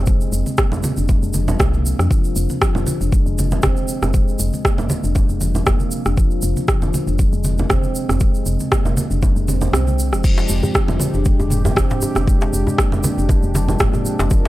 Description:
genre	afro house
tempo	118 BPM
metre	4/4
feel	swing 55% on 16ths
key	F dorian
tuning	A4 = 440 Hz
part	woody FM bass	bass	0.0-14.5 s	F1 to F2	-21 LUFS	equal	sidechain pumping
part	handpan	arpeggios	0.1-14.4 s	C3 to D4	-24 LUFS	left 1 dB	sidechain pumping, low-pass filter, tape echo
part	electronic kick drum	drums	0.1-14.4 s	none	-18 LUFS	equal	none
part	egg shaker	percussion	0.1-14.5 s	none	-30 LUFS	right 2 dB	none
part	congas	percussion	0.5-14.0 s	none	-24 LUFS	right 2 dB	none
part	afro-pop drum kit	drums	0.6-14.3 s	crash cymbal, rim click, toms	-21 LUFS	equal	none
part	warm analog pad	sustained chords	10.2-14.5 s	F3 to Bb4	-26 LUFS	right 1 dB	chorus, sidechain pumping
part	djembe	percussion	10.4-14.5 s	none	-26 LUFS	left 1 dB	none
room	studio ambience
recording	dry, gritty hardware recording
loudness	-15 LUFS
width	side -16 dB against mid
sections	0.0-14.5 A section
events	kick drops out 9.7-10.2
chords	0.0 Fm69

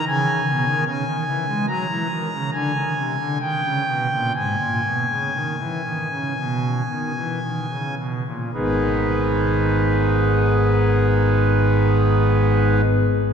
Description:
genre	classical, chorale-style piece for pipe organ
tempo	53-75 BPM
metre	4/4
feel	rubato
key	G# minor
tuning	A4 = 440 Hz
part	pipe organ, foundations	solo	0.0-12.8 s	G#1 to A#5	-18 LUFS	equal	none
room	wet cathedral reverb, RT60 5.2 s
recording	recorded in a church or concert hall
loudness	-18 LUFS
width	side -7 dB against mid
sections	0.0-8.5 A section; 8.5-12.9 B section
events	slowing down 0.0-8.5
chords	0.0 E (rootless); 0.9 A#m7b5/C#; 2.5 G#; 3.4 D#7; 4.4 G#m

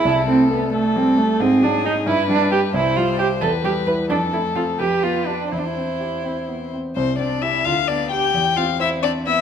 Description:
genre	quick classical-period movement for piano trio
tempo	82-91 BPM (dotted quarters)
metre	6/8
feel	rubato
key	C major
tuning	A4 = 440 Hz
part	warm violin	melody	0.0-9.4 s	Ab4 to G5	-23 LUFS	left 8 dB	none
part	dark cello	second line	0.0-9.4 s	A3 to B4	-20 LUFS	right 4 dB	none
part	clear concert grand piano	accompaniment	0.0-9.4 s	C2 to C5	-23 LUFS	left 1 dB	none
room	wet recital hall reverb, RT60 1.6 s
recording	none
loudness	-17 LUFS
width	side -8 dB against mid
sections	0.0-7.0 A section; 7.0-9.4 A section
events	none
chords	0.1 Am/C; 1.4 Ab5; 2.1 G; 2.7 C5; 3.4 Em; 4.1 F; 4.8 G7/F; 5.5 C/E; 7.0 C; 7.7 G/D; 8.3 C/E

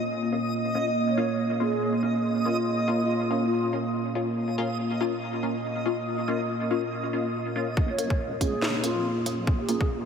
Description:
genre	deep dubstep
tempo	141 BPM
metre	4/4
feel	swing 56% on 16ths, half-time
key	Bb minor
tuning	A4 = 440 Hz
part	dark analog pad	sustained chords	0.0-10.1 s	Bb3	-29 LUFS	right 2 dB	chorus
part	backwards swelling texture	texture	0.0-7.8 s	Eb5	-33 LUFS	right 1 dB	built-in reverb
part	filtered dub chord stab	stabs	0.3-9.8 s	Bb3 to F4	-30 LUFS	left 2 dB	phaser, lush chorus, dub echo
part	breathy mellow low ney	melody	1.1-3.7, 7.9-9.9 s	F4 to Db5	-32 LUFS	left 1 dB	dub echo
part	deep soft wobble bass	bass	7.8-10.1 s	Bb1 to F2	-37 LUFS	equal	chorus, high-pass filter
part	electronic kick drum	drums	7.8-9.9 s	none	-26 LUFS	equal	none
part	garage drum kit	drums	8.0-9.8 s	hi-hat, snare drum	-32 LUFS	equal	none
room	wet huge ambient reverb, RT60 7.1 s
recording	dreamy mix soaked in reverb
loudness	-24 LUFS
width	side -7 dB against mid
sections	0.0-7.8 A section; 7.8-10.1 B section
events	build-up 7.8-10.1; filter sweep on synth stab 7.8-10.1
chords	0.0 Bbm

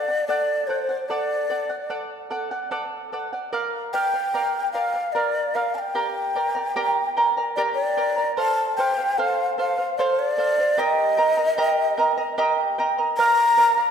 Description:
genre	andean folk, Andean ensemble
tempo	74 BPM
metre	3/4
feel	straight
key	unclear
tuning	A4 = 444 Hz
part	breathy mellow large quena	melody	0.0-13.9 s	C5 to Bb5	-22 LUFS	left 1 dB	none
part	charango	accompaniment	0.0-13.9 s	G4 to Bb5	-24 LUFS	right 2 dB	none
room	wet concert hall reverb, RT60 2.1 s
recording	minimal, uncompressed stereo recording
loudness	-20 LUFS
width	side -7 dB against mid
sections	0.0-8.4 A section; 8.4-13.9 B section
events	none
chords	0.0 D; 3.5 Bb; 5.9 Gm; 8.4 F; 10.8 Eb; 13.2 Bb

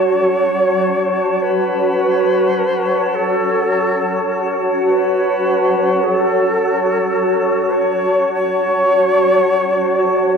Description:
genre	dark ambient drone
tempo	free time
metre	none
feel	none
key	F# minor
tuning	A4 = 445 Hz
part	bright reedy shakuhachi	melody	0.0-10.3 s	A4 to C#5	-18 LUFS	left 2 dB	tape echo
part	granular cloud pad	sustained chords	0.0-10.4 s	F#4 to A5	-15 LUFS	right 1 dB	built-in reverb
room	wet spring reverb, RT60 2.5 s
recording	echo-heavy mix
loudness	-14 LUFS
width	side -6 dB against mid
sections	0.0-10.4 A section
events	none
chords	0.0 F#m

